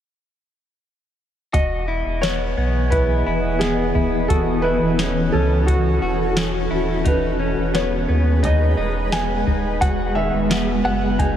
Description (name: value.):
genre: dream pop.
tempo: 87 BPM.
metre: 4/4.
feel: straight.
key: E major.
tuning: A4 = 435 Hz.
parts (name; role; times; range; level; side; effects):
felt-muted upright piano; melody; 1.5-11.4 s; F#4 to G#5; -24 LUFS; right 1 dB; diffuse ambient delay.
shimmering ambient pad; sustained chords; 2.1-11.4 s; E3 to D#5; -23 LUFS; equal; chorus, built-in reverb.
direct-recorded clean electric guitar; arpeggios; 1.5-11.4 s; D#3 to F#4; -26 LUFS; left 2 dB; lush chorus, diffuse ambient delay.
warm sub bass; bass; 1.5-11.4 s; D#1 to D#2; -23 LUFS; equal; none.
soft vintage rhythm box; drums; 1.5-11.4 s; hi-hat, kick drum, snare drum; -23 LUFS; equal; none.
room: moderate huge ambient reverb, RT60 8.5 s.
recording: dreamy mix soaked in reverb.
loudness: -17 LUFS.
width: side -10 dB against mid.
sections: 1.5-11.4 A section.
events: none.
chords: 1.5 Emaj7; 4.3 F#m/E; 7.1 G#m/E; 9.8 Emaj7.